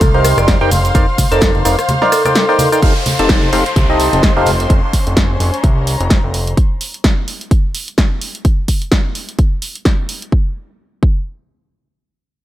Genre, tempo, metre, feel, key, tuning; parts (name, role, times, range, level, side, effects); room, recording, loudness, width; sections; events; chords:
piano house; 128 BPM; 4/4; swing 57% on 16ths; F mixolydian; A4 = 444 Hz
rich symphonic violin section; sustained chords; 0.0-6.6 s; C5 to F6; -26 LUFS; equal; sidechain pumping
fat analog bass; bass; 0.0-6.5 s; F1 to C2; -17 LUFS; equal; sidechain pumping
electronic kick drum; drums; 0.0-11.2 s; -13 LUFS; equal
punchy analog drum machine; drums; 0.0-10.3 s; hi-hat, ride cymbal, rim click, shaker, snare drum; -19 LUFS; equal
congas and tambourine; percussion; 0.0-4.7 s; -22 LUFS; equal
dark chamber string section; texture; 0.0-6.6 s; Db4 to C6; -22 LUFS; left 2 dB; sidechain pumping
percussive organ stab; riff; 0.1-4.5 s; Eb4 to A5; -16 LUFS; equal; chorus, phaser, sidechain pumping, tape echo
vibraphone with medium hard mallets; melody; 0.4-2.8 s; A4 to D5; -21 LUFS; equal; tape echo
downlifter; sound effects; 2.8-6.6 s; -25 LUFS; equal
light reverb, small room reverb; -12 LUFS; side -14 dB against mid
0.0-2.8 A section; 2.8-10.3 B section; 10.3-12.4 C section
drop 0.0-2.8; filter sweep on synth stab 2.8-4.7
0.0 Eb6; 0.7 Cm11/F; 2.8 F9; 4.7 Bbmadd9/F; 6.6 N.C.